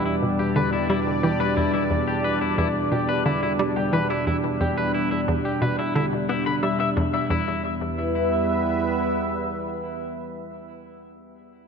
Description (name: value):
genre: ambient, sequencer-driven space music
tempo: 89 BPM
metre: 4/4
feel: straight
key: E minor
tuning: A4 = 440 Hz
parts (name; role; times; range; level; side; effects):
- sweeping resonant pad; sustained chords; 0.0-10.8 s; B2 to E5; -24 LUFS; equal; chorus
- twangy electric guitar; arpeggios; 0.0-7.6 s; E4 to B5; -28 LUFS; moving between left 6 dB and right 1 dB; auto-pan, ping-pong delay
- analog drone; bass; 0.0-9.3 s; E2; -34 LUFS; equal; chorus
- hollow square pluck; riff; 0.2-7.6 s; E2 to B3; -27 LUFS; equal; chorus, ping-pong delay
room: wet cathedral reverb, RT60 4.9 s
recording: in a vast, echoing space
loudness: -21 LUFS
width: side -6 dB against mid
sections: 0.0-7.3 A section; 7.3-10.0 B section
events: filter sweep on synth arpeggio sound 0.0-7.3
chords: 0.0 Em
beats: 0.56 1.24 | 1.91 2.58 3.26 3.93 | 4.61 5.28 5.95 6.63 | 7.30 7.98 8.65 9.32